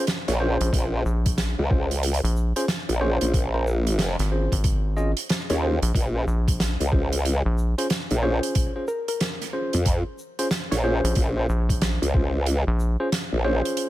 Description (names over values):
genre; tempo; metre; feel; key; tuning
glitch hop; 92 BPM; 4/4; swing 63% on 16ths; Bb minor; A4 = 440 Hz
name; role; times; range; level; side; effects
tine electric piano; stabs; 0.0-13.9 s; Db4 to Eb5; -29 LUFS; equal; sidechain pumping, dub echo
downlifter; sound effects; 0.0-0.7 s; none; -45 LUFS; right 1 dB; none
big rock drum kit; drums; 0.1-13.9 s; hi-hat, shaker, snare drum; -28 LUFS; right 2 dB; none
woody wave-folded pluck; melody; 0.3-4.2, 8.2-13.7 s; Bb4 to Db5; -33 LUFS; left 1 dB; chorus, dub echo
formant-sweep wobble bass; bass; 0.3-13.6 s; Bb1 to F2; -22 LUFS; equal; chorus, overdrive
rubbery square bass; bass; 0.6-13.0 s; Ab1 to Bb1; -23 LUFS; equal; none
electronic kick drum; drums; 0.7-12.3 s; none; -23 LUFS; equal; none
room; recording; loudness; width
studio ambience; none; -21 LUFS; side -15 dB against mid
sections
0.0-13.9 A section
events
none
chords
0.0 Bbm7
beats
0.08 | 0.73 1.38 2.03 2.69 | 3.34 3.99 4.64 5.29 | 5.95 6.60 7.25 7.90 | 8.55 9.21 9.86 10.51 | 11.16 11.82 12.47 13.12 | 13.77